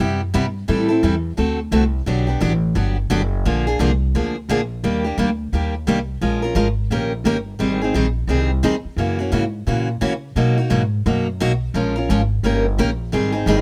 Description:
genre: acoustic string swing (jazz manouche).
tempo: 174 BPM.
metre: 4/4.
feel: swing 61% on 8ths.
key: Eb major from 4.8 s.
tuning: A4 = 439 Hz.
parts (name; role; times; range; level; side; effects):
picked steel-string acoustic guitar; accompaniment; 0.0-13.6 s; B2 to Bb4; -21 LUFS; equal; none.
upright bass; bass; 0.0-13.6 s; F#1 to Db3; -24 LUFS; equal; none.
room: little or no reverb.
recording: close, detailed microphones.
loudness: -20 LUFS.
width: mono.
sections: 0.0-4.8 A section; 4.8-13.6 A section.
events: none.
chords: 0.0 Cmaj7; 0.7 Am7; 1.4 D7; 2.1 Gmaj7; 3.4 Bb7; 4.8 Ebmaj7; 6.2 Bbm7; 6.9 Eb7; 7.6 Abmaj7; 9.0 Gb7; 10.4 Bmaj7; 11.7 Bbm7; 12.4 Eb7.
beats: 0.34 | 0.68 1.03 1.37 1.72 | 2.06 2.41 2.75 3.10 | 3.45 3.79 4.14 4.48 | 4.83 5.17 5.52 5.87 | 6.21 6.56 6.90 7.25 | 7.59 7.94 8.29 8.63 | 8.98 9.32 9.67 10.02 | 10.36 10.71 11.05 11.40 | 11.74 12.09 12.43 12.78 | 13.12 13.47.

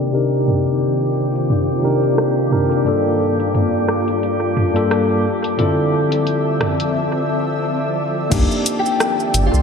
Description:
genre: sunset chillout.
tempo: 88 BPM.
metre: 4/4.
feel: swing 56% on 16ths.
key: C dorian.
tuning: A4 = 440 Hz.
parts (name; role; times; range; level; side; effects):
tine electric piano; accompaniment; 0.0-9.6 s; G2 to Bb4; -18 LUFS; left 1 dB; auto-pan, analog delay.
shimmering ambient pad; sustained chords; 0.0-9.6 s; Eb3 to E5; -21 LUFS; left 1 dB; chorus, built-in reverb.
drifting glass-harmonics texture; texture; 0.0-7.0 s; G4 to G5; -29 LUFS; equal; chorus, built-in reverb.
deep house drum kit; drums; 0.1-9.6 s; crash cymbal, hi-hat, rim click, shaker, toms; -22 LUFS; right 1 dB; overdrive, low-pass filter on perc, low-pass filter on toms, low-pass filter on snare, low-pass filter on hats, low-pass filter on cymbals, low-pass filter on room, analog delay.
warm sub bass; bass; 8.3-9.6 s; G1 to C2; -16 LUFS; equal; tube saturation.
electronic kick drum; drums; 8.3-8.5 s; none; -22 LUFS; equal; overdrive.
electric guitar at the edge of break-up; melody; 8.8-9.6 s; F4 to G4; -19 LUFS; left 2 dB; ensemble chorus.
room: wet echo chamber reverb, RT60 1.9 s.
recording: echo-heavy mix, low-pass filter.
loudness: -15 LUFS.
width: side -6 dB against mid.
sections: 0.0-8.3 A section; 8.3-9.6 B section.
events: filter sweep on ambient pad 0.0-8.3; filter sweep 0.0-8.3; break 7.0-8.3.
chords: 0.0 Cm9; 2.9 Gm9; 5.2 Dm9; 8.3 Cm9.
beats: | 0.14 0.82 1.50 2.18 | 2.86 3.54 4.23 4.91 | 5.59 6.27 6.95 7.64 | 8.32 9.00.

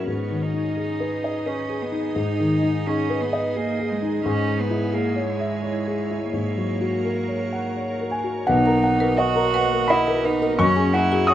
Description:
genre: neoclassical piano and strings.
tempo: 86 BPM.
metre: 3/4.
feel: rubato.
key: G# minor.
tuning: A4 = 440 Hz.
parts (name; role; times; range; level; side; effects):
rich cello; second line; 0.0-11.3 s; G#3 to F#4; -26 LUFS; right 5 dB; none.
warm concert grand piano; accompaniment; 0.0-11.3 s; B1 to D#6; -22 LUFS; left 1 dB; none.
soft additive organ-like pad; sustained chords; 0.0-11.3 s; A#3 to D#5; -32 LUFS; right 1 dB; ensemble chorus, built-in reverb.
marimba with medium hard mallets; arpeggios; 8.5-11.3 s; F#4 to A#5; -28 LUFS; left 1 dB; slapback echo.
room: light reverb.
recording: rough home demo mix.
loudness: -20 LUFS.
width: side -12 dB against mid.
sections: 0.1-8.5 A section; 8.5-11.3 B section.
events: none.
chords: 0.1 G#m; 4.2 C#m/G#; 6.3 F#/G#; 8.5 Bmaj7; 10.6 F#sus2.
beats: | 0.07 0.77 1.47 | 2.17 2.87 3.55 | 4.24 4.93 5.62 | 6.33 7.04 7.76 | 8.47 9.18 9.89 | 10.59 11.29.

